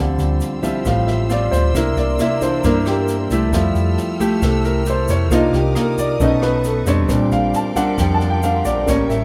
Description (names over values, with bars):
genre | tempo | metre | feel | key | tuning
bossa nova | 135 BPM | 4/4 | straight | unclear | A4 = 440 Hz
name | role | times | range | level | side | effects
nylon-string guitar | accompaniment | 0.0-9.2 s | A2 to G4 | -22 LUFS | equal | none
warm grand piano | accompaniment | 0.0-9.2 s | E3 to A5 | -23 LUFS | equal | none
clear studio string section | sustained chords | 0.0-9.2 s | G4 to F6 | -33 LUFS | equal | none
hollow-body short-scale fingered electric bass | bass | 0.0-9.2 s | A1 to G2 | -23 LUFS | equal | none
jazz brush drum kit | drums | 0.2-9.2 s | kick drum, rim click, snare drum | -29 LUFS | equal | none
tube shaker | percussion | 0.2-9.2 s | none | -39 LUFS | equal | none
room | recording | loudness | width
moderate large studio reverb, RT60 1.5 s | none | -18 LUFS | mono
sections
0.0-9.2 A section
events
grand piano solo 0.0-9.2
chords
0.0 Dm11; 1.7 C9; 3.5 Fmaj9; 5.3 Cm11; 6.2 B9; 7.1 Bb69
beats
0.41 0.85 1.30 | 1.74 2.19 2.63 3.08 | 3.53 3.97 4.42 4.86 | 5.31 5.75 6.20 6.64 | 7.09 7.54 7.98 8.43 | 8.87